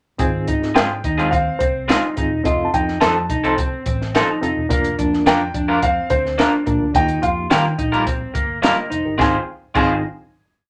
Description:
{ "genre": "uptempo 1960s-style soul", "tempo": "107 BPM", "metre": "4/4", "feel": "straight", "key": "Ab major", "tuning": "A4 = 440 Hz", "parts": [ { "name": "barky reed electric piano", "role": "accompaniment", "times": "0.2-10.0 s", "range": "Bb3 to Eb5", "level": "-28 LUFS", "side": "equal", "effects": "overdrive, fast tremolo" }, { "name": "electric guitar through a small old amp", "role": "riff", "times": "0.2-10.0 s", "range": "Bb3 to F4", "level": "-25 LUFS", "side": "equal", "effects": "none" }, { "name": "vintage muted fingered electric bass", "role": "bass", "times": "0.2-10.0 s", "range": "Fb1 to Eb3", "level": "-29 LUFS", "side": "equal", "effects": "none" }, { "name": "compact cocktail drum kit", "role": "drums", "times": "0.2-9.9 s", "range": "crash cymbal, hi-hat, kick drum, snare drum", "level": "-24 LUFS", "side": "equal", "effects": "none" }, { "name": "electric guitar through a small old amp", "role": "stabs", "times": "0.7-9.9 s", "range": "F3 to C5", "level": "-22 LUFS", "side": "equal", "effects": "none" }, { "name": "warm concert grand piano", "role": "melody", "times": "0.8-10.0 s", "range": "C5 to A5", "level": "-23 LUFS", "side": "equal", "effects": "none" } ], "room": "wet small room ambience, RT60 0.5 s", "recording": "none", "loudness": "-19 LUFS", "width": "mono", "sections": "0.2-9.2 verse; 9.2-10.7 final chord", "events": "none", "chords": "0.2 Ab6; 2.5 F7; 4.7 Bb/F; 6.9 Ebadd9; 9.2 Ab6" }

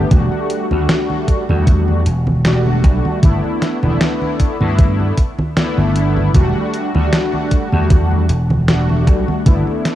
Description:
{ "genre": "vaporwave", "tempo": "77 BPM", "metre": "4/4", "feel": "swing 54% on 16ths", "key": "unclear", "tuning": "A4 = 441 Hz", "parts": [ { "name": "mellow synth brass", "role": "accompaniment", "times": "0.0-9.9 s", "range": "G3 to F#4", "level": "-19 LUFS", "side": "left 1 dB", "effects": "analog chorus, analog delay" }, { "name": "vintage slap bass", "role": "bass", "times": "0.0-9.6 s", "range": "E1 to G2", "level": "-16 LUFS", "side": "equal", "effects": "none" }, { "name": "detuned 8-bit digital drum machine", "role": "drums", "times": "0.1-9.9 s", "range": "congas, hi-hat, snare drum", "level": "-20 LUFS", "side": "right 1 dB", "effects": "studio reverb" }, { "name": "electronic kick drum", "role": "drums", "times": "0.1-9.6 s", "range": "none", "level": "-12 LUFS", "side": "equal", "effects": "overdrive, studio reverb" } ], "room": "little or no reverb", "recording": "cassette tape", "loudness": "-13 LUFS", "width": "side -13 dB against mid", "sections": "0.0-9.9 A section", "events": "none", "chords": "0.1 Em11; 3.2 G69; 6.3 Em11" }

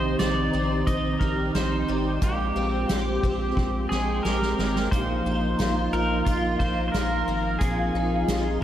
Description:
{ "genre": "dream pop", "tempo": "89 BPM", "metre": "4/4", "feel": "straight", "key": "unclear", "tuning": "A4 = 438 Hz", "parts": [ { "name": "pedal steel guitar", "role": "melody", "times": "0.0-8.6 s", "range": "F4 to Eb5", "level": "-29 LUFS", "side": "right 1 dB", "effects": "lush chorus, tape echo" }, { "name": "mellow tonewheel organ", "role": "sustained chords", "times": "0.0-8.6 s", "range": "Eb3 to G5", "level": "-28 LUFS", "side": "right 1 dB", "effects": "slow rotary speaker" }, { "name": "picked twelve-string acoustic guitar", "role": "arpeggios", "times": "0.0-8.6 s", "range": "Bb2 to G4", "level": "-29 LUFS", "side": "left 2 dB", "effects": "ensemble chorus, tape echo" }, { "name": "round analog bass", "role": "bass", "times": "0.0-8.6 s", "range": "Ab1 to Bb1", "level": "-29 LUFS", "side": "equal", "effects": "none" }, { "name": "soft-mallet drum kit", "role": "drums", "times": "0.2-8.4 s", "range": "hi-hat, kick drum, snare drum", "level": "-29 LUFS", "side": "equal", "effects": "none" } ], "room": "wet lush hall reverb, RT60 2.6 s", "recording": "dreamy mix soaked in reverb", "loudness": "-22 LUFS", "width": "side -11 dB against mid", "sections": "0.0-8.6 A section", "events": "drum fill 3.6-4.9", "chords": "0.0 Cmadd9/Bb; 4.9 Bbsus4" }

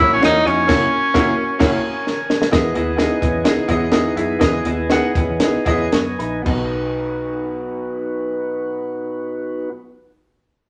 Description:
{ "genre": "uptempo 1960s-style soul", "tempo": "111-130 BPM", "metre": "4/4", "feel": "straight", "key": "B major", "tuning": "A4 = 440 Hz", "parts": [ { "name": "clear tenor saxophone", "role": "melody", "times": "0.0-2.1 s", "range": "C#4 to D#4", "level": "-19 LUFS", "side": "equal", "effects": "none" }, { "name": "clear upright piano", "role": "accompaniment", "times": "0.0-9.8 s", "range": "B1 to C#6", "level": "-24 LUFS", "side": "equal", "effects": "none" }, { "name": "tonewheel organ", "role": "sustained chords", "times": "0.0-9.7 s", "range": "B3 to G#5", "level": "-27 LUFS", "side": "equal", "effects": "slow rotary speaker" }, { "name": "electric guitar through a small old amp", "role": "riff", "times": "0.0-8.0 s", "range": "B3 to E4", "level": "-31 LUFS", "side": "equal", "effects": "none" }, { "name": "vintage muted fingered electric bass", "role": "bass", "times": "0.0-9.7 s", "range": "F#1 to F#2", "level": "-31 LUFS", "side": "equal", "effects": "none" }, { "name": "compact cocktail drum kit", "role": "drums", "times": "0.0-6.6 s", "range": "crash cymbal, hi-hat, kick drum, ride cymbal, snare drum", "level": "-22 LUFS", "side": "equal", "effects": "none" } ], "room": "wet large studio reverb, RT60 0.9 s", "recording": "none", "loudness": "-19 LUFS", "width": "mono", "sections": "0.0-2.5 A section; 2.5-6.5 B section; 6.5-10.7 C section", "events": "band accent 0.7-2.5; drum fill 2.1-2.5; slowing down 2.5-6.5; upright piano fill 5.4-6.5", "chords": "0.0 F#7; 2.5 Emaj7; 6.5 B" }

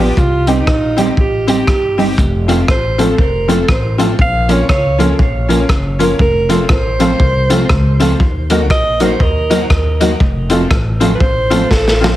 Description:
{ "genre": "ska", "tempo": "120 BPM", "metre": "4/4", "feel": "swing 61% on 8ths", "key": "unclear", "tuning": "A4 = 440 Hz", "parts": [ { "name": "breathy alto saxophone", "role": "melody", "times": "0.0-12.2 s", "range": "Eb4 to F5", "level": "-18 LUFS", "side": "right 2 dB", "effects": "tape echo, plate reverb" }, { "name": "mellow electric guitar", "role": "accompaniment", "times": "0.0-12.1 s", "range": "F3 to G4", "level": "-17 LUFS", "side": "right 3 dB", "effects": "none" }, { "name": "tack piano", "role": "stabs", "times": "0.0-12.2 s", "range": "B3 to Bb4", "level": "-18 LUFS", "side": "left 4 dB", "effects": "tape echo" }, { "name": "upright bass", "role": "bass", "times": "0.0-12.1 s", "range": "F1 to Eb2", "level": "-17 LUFS", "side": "equal", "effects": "none" }, { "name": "crunchy breakbeat drum kit", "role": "drums", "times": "0.2-12.2 s", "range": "hi-hat, kick drum, rim click, snare drum", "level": "-16 LUFS", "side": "equal", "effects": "none" } ], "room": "light reverb", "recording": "heavily compressed radio sound, multiband compression", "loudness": "-10 LUFS", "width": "side -14 dB against mid", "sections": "0.0-12.2 A section", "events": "alto saxophone solo 0.0-12.2; drum fill 11.7-12.2", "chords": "0.2 Cm; 2.2 F; 4.2 Bbm; 6.2 F; 8.2 Ebm; 10.2 F" }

